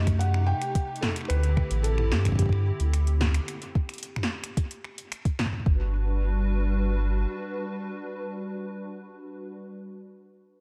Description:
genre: IDM.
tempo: 110 BPM.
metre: 4/4.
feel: straight.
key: G major.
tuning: A4 = 440 Hz.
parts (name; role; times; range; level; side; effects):
felt-muted upright piano; melody; 0.0-5.1 s; G4 to G5; -38 LUFS; equal; subtle chorus, tape echo.
hollow soft pad; sustained chords; 0.0-9.6 s; C3 to B4; -37 LUFS; equal; ensemble chorus, sidechain pumping.
warm sub bass; bass; 0.0-7.3 s; G1 to G2; -26 LUFS; equal; tube saturation.
electro analog drum machine; drums; 0.1-5.7 s; finger snaps, hi-hat, snare drum, toms; -34 LUFS; equal; none.
electronic kick drum; drums; 0.1-5.8 s; none; -27 LUFS; equal; none.
room: light reverb.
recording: none.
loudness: -27 LUFS.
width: mono.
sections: 0.0-5.7 A section; 5.7-10.0 B section.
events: none.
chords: 0.0 Cm6; 1.3 D9sus4; 5.7 Gmaj7.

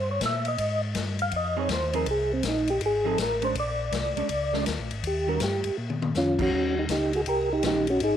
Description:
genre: soul jazz organ trio.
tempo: 162 BPM.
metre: 4/4.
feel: swing 65% on 8ths.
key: Eb mixolydian.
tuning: A4 = 442 Hz.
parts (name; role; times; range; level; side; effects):
percussive tonewheel organ; melody; 0.0-8.2 s; C4 to F5; -26 LUFS; equal; slow rotary speaker, chorus vibrato.
mellow tonewheel organ; bass; 0.0-8.2 s; Ab1 to Bb2; -32 LUFS; equal; slow rotary speaker, transformer saturation.
swinging big-band drum kit; drums; 0.2-8.1 s; crash cymbal, hi-hat, kick drum, ride cymbal, snare drum, toms; -32 LUFS; left 5 dB; none.
vintage hollow-body jazz guitar; accompaniment; 1.6-7.9 s; Eb3 to Ab4; -33 LUFS; right 14 dB; none.
room: light reverb, small room ambience.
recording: 1960s-style stereo.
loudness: -24 LUFS.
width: side -9 dB against mid.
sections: 0.0-6.5 A section; 6.5-8.2 B section.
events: tonewheel organ solo 0.0-6.5; drum fill 5.8-6.1.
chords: 0.0 Edim; 0.6 Fm7; 3.6 Bb7#9; 5.0 Eb7#9; 5.8 Bbm; 6.5 Eb7#9.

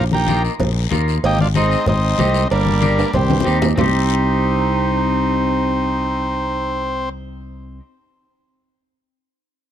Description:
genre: latin, cumbia.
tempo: 188 BPM.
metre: 4/4.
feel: straight.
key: C minor.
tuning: A4 = 440 Hz.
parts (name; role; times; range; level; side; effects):
combo organ; melody; 0.0-7.1 s; G3 to Bb4; -21 LUFS; left 1 dB; none.
bright clarinet; second line; 0.0-7.1 s; Eb3 to Eb4; -25 LUFS; right 8 dB; none.
fingered electric bass; bass; 0.0-7.8 s; G1 to Eb2; -20 LUFS; equal; none.
congas; percussion; 0.1-3.9 s; none; -22 LUFS; left 5 dB; none.
electric guitar at the edge of break-up; accompaniment; 0.3-7.8 s; Bb3 to Ab4; -24 LUFS; equal; spring reverb.
guiro; percussion; 0.3-3.9 s; none; -32 LUFS; left 19 dB; none.
cowbell and timbales; percussion; 0.6-3.9 s; none; -24 LUFS; right 6 dB; none.
room: small room ambience.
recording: dry, close 1970s-style studio recording.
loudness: -15 LUFS.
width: side -10 dB against mid.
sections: 0.0-3.8 A section; 3.8-6.3 B section.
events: drum fill 3.0-3.8.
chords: 0.0 Bbsus4; 1.2 Ab; 2.5 Gm; 3.1 Cm.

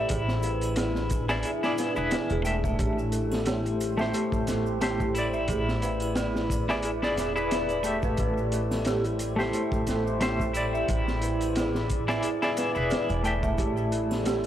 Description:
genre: trip hop.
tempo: 89 BPM.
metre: 4/4.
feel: swing 55% on 16ths.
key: A minor.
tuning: A4 = 440 Hz.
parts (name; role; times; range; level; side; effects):
semi-hollow electric guitar; accompaniment; 0.0-14.5 s; A3 to G5; -30 LUFS; equal; tremolo, tape echo.
deep dark ambient pad; sustained chords; 0.0-14.5 s; A3 to D5; -32 LUFS; left 1 dB; chorus, built-in reverb.
dark detuned synth bell; arpeggios; 0.0-14.5 s; G4 to E5; -33 LUFS; right 2 dB; chorus, phaser, vintage 12-bit sampler grit, tape echo.
upright bass; bass; 0.0-14.5 s; E1 to A1; -32 LUFS; equal; none.
crunchy breakbeat drum kit; drums; 0.1-14.5 s; hi-hat, kick drum, snare drum; -31 LUFS; equal; none.
maracas and triangle; percussion; 0.1-14.5 s; none; -48 LUFS; right 4 dB; none.
room: studio reverb.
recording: dry, gritty hardware recording, transformer saturation, vinyl crackle.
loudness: -24 LUFS.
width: side -11 dB against mid.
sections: 0.0-14.5 A section.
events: none.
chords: 0.1 E7/A; 2.8 Am7; 5.5 E7/A; 8.2 Am7; 10.9 E7/A; 13.6 Am7.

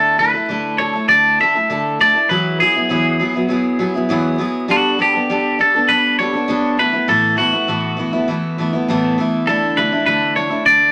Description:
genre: rock.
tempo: 100 BPM.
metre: 4/4.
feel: straight.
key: D major.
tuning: A4 = 440 Hz.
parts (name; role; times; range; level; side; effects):
twangy electric guitar; melody; 0.0-10.9 s; F#4 to E5; -17 LUFS; equal; none.
picked steel-string acoustic guitar; accompaniment; 0.0-10.9 s; E2 to A4; -20 LUFS; equal; none.
room: moderate small room reverb, RT60 0.5 s.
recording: vinyl crackle.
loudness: -16 LUFS.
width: mono.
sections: 0.0-10.9 A section.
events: none.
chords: 0.0 Dsus2; 2.3 Eadd9; 4.7 Gadd9; 6.8 Asus2; 9.5 Dsus2.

